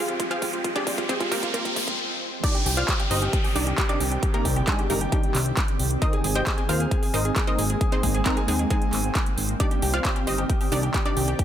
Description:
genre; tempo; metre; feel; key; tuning
uplifting trance; 134 BPM; 4/4; straight; C minor; A4 = 438 Hz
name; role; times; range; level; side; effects
wide unison pluck; melody; 0.0-11.4 s; G3 to G5; -28 LUFS; equal; sidechain pumping, ping-pong delay
shimmering ambient pad; sustained chords; 0.0-11.4 s; F2 to G5; -31 LUFS; right 1 dB; chorus, built-in reverb, sidechain pumping
riser, swell and downlifter; sound effects; 0.0-6.0 s; none; -31 LUFS; equal; none
big-room dance drum kit; drums; 0.1-11.4 s; crash cymbal, handclaps, hi-hat; -29 LUFS; right 2 dB; none
electronic kick drum; drums; 0.2-11.4 s; none; -25 LUFS; equal; none
bright baby grand piano; second line; 2.4-11.4 s; G5 to G6; -33 LUFS; left 1 dB; sidechain pumping, digital delay
fat analog bass; bass; 2.7-11.3 s; G1 to Eb2; -26 LUFS; equal; sidechain pumping
room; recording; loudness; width
light reverb; high-pass filter; -21 LUFS; side -10 dB against mid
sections
0.0-2.4 A section; 2.4-11.4 B section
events
build-up 0.0-2.4; drum fill 0.0-2.0; riser 0.0-2.0; filter sweep 0.0-2.4; swell 1.5-2.4; stop 2.0-2.4; drop 2.4-11.4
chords
0.0 Fmadd9; 2.4 Cmadd9; 6.0 Abadd9; 9.6 Cmadd9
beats
0.20 | 0.65 1.09 1.54 1.99 | 2.44 2.88 3.33 3.78 | 4.23 4.67 5.12 5.57 | 6.02 6.47 6.91 7.36 | 7.81 8.26 8.71 9.15 | 9.60 10.05 10.50 10.94 | 11.39

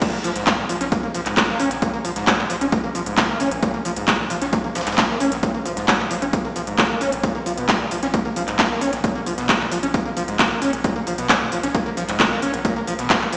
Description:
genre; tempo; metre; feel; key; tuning
driving peak-time techno; 133 BPM; 4/4; straight; Bb phrygian; A4 = 440 Hz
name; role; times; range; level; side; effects
screaming distorted acid line; riff; 0.0-13.4 s; Bb1 to Db4; -23 LUFS; equal; distortion, lush chorus, sidechain pumping, digital delay
breakbeat sampler-style drum kit; drums; 0.0-13.4 s; hi-hat, snare drum; -31 LUFS; equal; high-pass filter on snare, studio reverb, high-pass filter on hats
electronic kick drum; drums; 0.0-13.2 s; none; -22 LUFS; equal; studio reverb
techno drum kit; drums; 0.0-13.4 s; crash cymbal, handclaps, hi-hat; -21 LUFS; equal; studio reverb, sidechain pumping on hats, sidechain pumping on cymbals
saturated sub bass; bass; 0.2-13.4 s; Bb1; -38 LUFS; equal; tube saturation, sidechain pumping, low-pass filter
room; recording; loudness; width
wet stone room reverb, RT60 1.3 s; played on a big sound system in a bare room, large studio reverb, small speaker sound; -18 LUFS; side -40 dB against mid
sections
0.0-13.4 A section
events
none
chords
none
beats
| 0.02 0.47 0.92 1.37 | 1.82 2.27 2.72 3.17 | 3.63 4.08 4.53 4.98 | 5.43 5.88 6.33 6.78 | 7.24 7.69 8.14 8.59 | 9.04 9.49 9.94 10.39 | 10.85 11.30 11.75 12.20 | 12.65 13.10

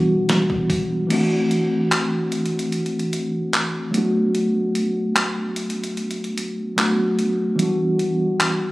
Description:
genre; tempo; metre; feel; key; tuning
contemporary R&B; 74 BPM; 4/4; straight; unclear; A4 = 441 Hz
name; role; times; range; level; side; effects
mellow tine electric piano; accompaniment; 0.0-8.7 s; E3 to F#4; -20 LUFS; equal; medium stereo tremolo
long sustained 808-style bass; bass; 0.0-1.1 s; E1; -32 LUFS; equal; none
detuned 8-bit digital drum machine; drums; 0.3-8.6 s; crash cymbal, handclaps, hi-hat, kick drum, snare drum; -24 LUFS; equal; none
room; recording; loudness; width
light reverb, digital ambience; recorded on a phone in the room, studio reverb; -19 LUFS; side -19 dB against mid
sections
0.0-1.1 A section; 1.1-8.7 B section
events
kick muted 1.1-8.7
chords
0.0 Em7; 1.1 D7; 3.9 Bm7; 7.6 Em7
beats
0.29 | 1.10 1.92 2.73 3.54 | 4.35 5.16 5.97 6.78 | 7.59 8.40

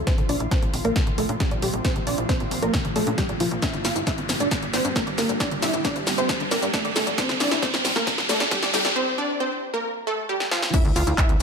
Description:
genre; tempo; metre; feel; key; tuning
uplifting trance; 135 BPM; 4/4; straight; unclear; A4 = 437 Hz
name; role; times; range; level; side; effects
shimmering ambient pad; sustained chords; 0.0-11.4 s; Bb2 to G4; -33 LUFS; right 1 dB; chorus, built-in reverb, sidechain pumping
tight sequencer bass; bass; 0.0-11.4 s; G1 to Bb2; -30 LUFS; equal; sidechain pumping
riser and sub drop; sound effects; 0.2-11.4 s; none; -30 LUFS; right 1 dB; none
wide unison pluck; melody; 0.1-11.4 s; F3 to F5; -26 LUFS; right 1 dB; sidechain pumping, ping-pong delay
tight sequenced synth; arpeggios; 0.1-11.4 s; D3 to D5; -32 LUFS; left 2 dB; chorus, phaser, sidechain pumping, ping-pong delay
big-room dance drum kit; drums; 0.1-11.4 s; crash cymbal, handclaps, hi-hat, shaker, snare drum; -26 LUFS; equal; none
electronic kick drum; drums; 0.1-11.3 s; none; -25 LUFS; equal; none
room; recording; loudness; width
moderate digital room reverb, RT60 1.1 s; dark, warm production, high-pass filter; -21 LUFS; side -6 dB against mid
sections
0.0-10.7 A section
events
build-up 0.0-10.7; drum fill 0.0-9.0, 10.4-10.7; filter sweep on synth pluck 0.0-10.7; filter sweep on synth arpeggio sound 0.0-10.7; filter sweep 0.0-10.7; riser 0.2-9.0; break 9.0-10.7; impact 10.7-11.4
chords
0.1 Bbsus2; 3.6 Gm; 10.7 Dmadd9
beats
| 0.07 0.52 0.96 1.40 | 1.85 2.29 2.74 3.18 | 3.63 4.07 4.51 4.96 | 5.40 5.85 6.29 6.74 | 7.18 7.63 8.07 8.52 | 8.96 9.40 9.85 10.29 | 10.74 11.18

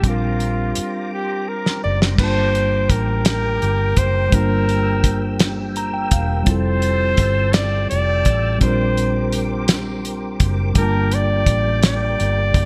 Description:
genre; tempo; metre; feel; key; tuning
slow six-eight R&B; 56 BPM (dotted quarters); 6/8; straight; G dorian; A4 = 440 Hz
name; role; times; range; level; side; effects
warm flugelhorn; melody; 0.0-12.7 s; F4 to D5; -24 LUFS; equal; digital delay
mellow tine electric piano; accompaniment; 0.0-12.7 s; G3 to Bb5; -26 LUFS; equal; none
tonewheel organ; sustained chords; 0.0-12.7 s; G4 to E6; -33 LUFS; equal; chorus vibrato, slow rotary speaker
vintage muted fingered electric bass; bass; 0.0-12.7 s; E1 to Bb1; -23 LUFS; equal; none
cloth-damped thuddy drum kit; drums; 0.0-12.7 s; crash cymbal, hi-hat, kick drum, snare drum; -20 LUFS; equal; none
room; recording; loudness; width
light reverb; bright 1980s-style digital production; -19 LUFS; mono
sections
0.0-2.2 A section; 2.2-12.7 B section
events
drum fill 1.1-2.2; tine electric piano fill 5.4-6.5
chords
0.0 Bb69; 2.2 Gm7; 6.5 Fmaj9; 8.6 Bb69; 10.8 Gm7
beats
| 0.04 1.11 | 2.18 3.25 | 4.33 5.40 | 6.47 7.54 | 8.61 9.68 | 10.76 11.83

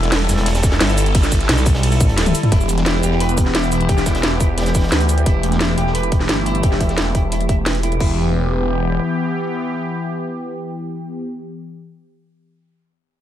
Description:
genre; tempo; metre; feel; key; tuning
dark technical drum and bass; 175 BPM; 4/4; straight; E minor; A4 = 445 Hz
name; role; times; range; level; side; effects
sweeping resonant pad; sustained chords; 0.0-11.2 s; E3 to A4; -22 LUFS; left 1 dB; chorus, sidechain pumping
phased detuned saw bass; bass; 0.0-9.0 s; E1 to D2; -19 LUFS; equal; phaser, tube saturation, sidechain pumping
crunchy breakbeat drum kit; drums; 0.0-7.9 s; hi-hat, snare drum; -31 LUFS; equal; none
drum and bass drum kit; drums; 0.0-8.1 s; crash cymbal, hi-hat, ride cymbal, shaker, snare drum, toms; -21 LUFS; equal; none
growling FM bass; bass; 0.3-2.3 s; E1 to B1; -17 LUFS; equal; none
electronic kick drum; drums; 0.6-8.1 s; none; -17 LUFS; equal; none
electric guitar at the edge of break-up; arpeggios; 2.5-8.2 s; E4 to E5; -26 LUFS; equal; wide subtle chorus, sidechain pumping, low-pass filter, tape echo
room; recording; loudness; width
light reverb, digital ambience; none; -15 LUFS; side -11 dB against mid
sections
0.0-2.5 A section; 2.5-8.0 B section; 8.0-10.7 C section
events
drop 0.0-2.5; drum fill 2.2-2.5; filter sweep on detuned saw bass 2.5-8.0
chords
0.0 Em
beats
0.12 0.46 0.81 | 1.15 1.49 1.83 2.18 | 2.52 2.86 3.21 3.55 | 3.89 4.23 4.58 4.92 | 5.26 5.61 5.95 6.29 | 6.63 6.98 7.32 7.66 | 8.01 8.35 8.69 9.03 | 9.38 9.72 10.06 10.40

